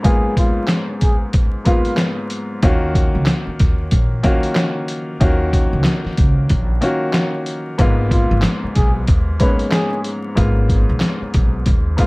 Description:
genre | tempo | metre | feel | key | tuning
hip hop, boom-bap hip-hop | 93 BPM | 4/4 | swing 59% on 16ths | G# dorian | A4 = 440 Hz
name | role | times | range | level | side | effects
trumpet with bucket mute | melody | 0.0-2.0, 8.1-10.0 s | E#4 to B4 | -22 LUFS | equal | high-pass filter, low-pass filter, slapback echo
clear grand piano | accompaniment | 0.0-12.1 s | G#2 to F#4 | -21 LUFS | left 1 dB | high-pass filter, low-pass filter
trip hop sampler-style drum kit | drums | 0.0-12.1 s | handclaps, hi-hat, kick drum, snare drum | -16 LUFS | equal | vintage 12-bit sampler grit
upright bass | bass | 2.6-12.0 s | G#1 to D#2 | -19 LUFS | equal | none
room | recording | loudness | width
light reverb | dark, warm production, vinyl crackle | -15 LUFS | side -25 dB against mid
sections
0.0-12.1 A section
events
break 0.0-2.6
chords
0.0 G#m69; 2.6 D#m9; 7.8 G#m69

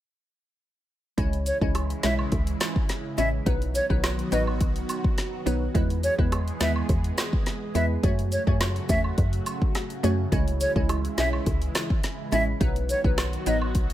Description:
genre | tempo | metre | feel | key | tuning
dancehall | 105 BPM | 4/4 | straight | C# minor | A4 = 440 Hz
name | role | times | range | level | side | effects
glassy wavetable pluck | accompaniment | 1.2-13.7 s | F#3 to C#5 | -30 LUFS | equal | chorus
lush unison pad | sustained chords | 1.5-13.9 s | C#3 to G#4 | -34 LUFS | right 1 dB | chorus, phaser, sidechain pumping
woody FM bass | bass | 1.2-13.9 s | A1 to F#2 | -27 LUFS | equal | none
deep house drum kit | drums | 1.2-13.9 s | handclaps, hi-hat, kick drum, rim click, snare drum | -26 LUFS | equal | none
breathy jazz flute | melody | 1.5-13.6 s | C#5 to E5 | -29 LUFS | equal | tape echo
cabasa and woodblock | percussion | 1.5-13.7 s | none | -36 LUFS | right 3 dB | none
room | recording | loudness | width
little or no reverb | none | -23 LUFS | side -13 dB against mid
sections
1.2-13.9 A section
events
none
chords
1.2 C#m; 3.5 B; 5.8 E; 8.0 F#m; 10.3 C#m; 12.6 B

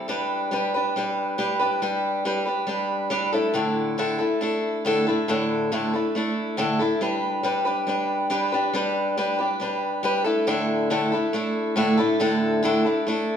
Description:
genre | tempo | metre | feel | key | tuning
rock | 139 BPM | 4/4 | straight | G major | A4 = 440 Hz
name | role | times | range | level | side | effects
picked old ladder-braced acoustic guitar | solo | 0.0-13.4 s | A2 to B4 | -21 LUFS | equal | none
room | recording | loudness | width
wet large studio reverb, RT60 1.4 s | band playing live in one room | -21 LUFS | side -8 dB against mid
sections
0.1-13.4 A section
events
none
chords
0.1 G; 3.3 Dsus2/A; 7.0 G; 10.3 Dsus2/A

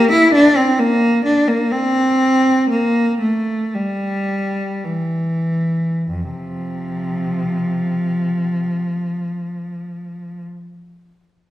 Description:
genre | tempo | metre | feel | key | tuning
classical, baroque-style suite movement for unaccompanied cello | 46-69 BPM | 4/4 | rubato | F major | A4 = 440 Hz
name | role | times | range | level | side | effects
rich cello | solo | 0.0-10.4 s | F2 to E4 | -16 LUFS | equal | none
room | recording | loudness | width
wet recital hall reverb, RT60 1.8 s | recorded in a church or concert hall | -16 LUFS | side -14 dB against mid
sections
0.0-6.1 A section; 6.1-11.0 B section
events
slowing down 0.0-6.1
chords
none

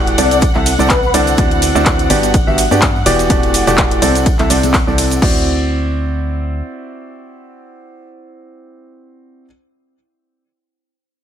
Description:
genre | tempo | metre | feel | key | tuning
piano house | 125 BPM | 4/4 | swing 55% on 16ths | D mixolydian | A4 = 440 Hz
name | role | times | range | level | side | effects
dark studio violin section | sustained chords | 0.0-5.2 s | F#5 | -22 LUFS | left 1 dB | sidechain pumping
clear concert grand piano | riff | 0.0-9.4 s | G2 to E5 | -16 LUFS | right 1 dB | sidechain pumping, digital delay
organ-like FM bass | bass | 0.0-6.6 s | E1 to G2 | -19 LUFS | equal | sidechain pumping
house drum kit | drums | 0.1-5.3 s | crash cymbal, handclaps, hi-hat, ride cymbal, shaker | -18 LUFS | equal | none
tambourine and congas | percussion | 0.1-5.2 s | none | -26 LUFS | left 5 dB | none
breathy flute-like synth lead | melody | 0.2-1.1 s | B4 to D5 | -20 LUFS | left 4 dB | ensemble chorus, digital delay
electronic kick drum | drums | 0.4-5.3 s | none | -16 LUFS | equal | none
room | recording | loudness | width
little or no reverb | none | -11 LUFS | side -9 dB against mid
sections
0.0-5.2 A section; 5.2-9.1 B section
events
drop 0.0-5.2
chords
0.2 C69; 1.4 D9; 2.1 Gmaj7; 3.3 Em11; 4.0 C69; 5.2 D9

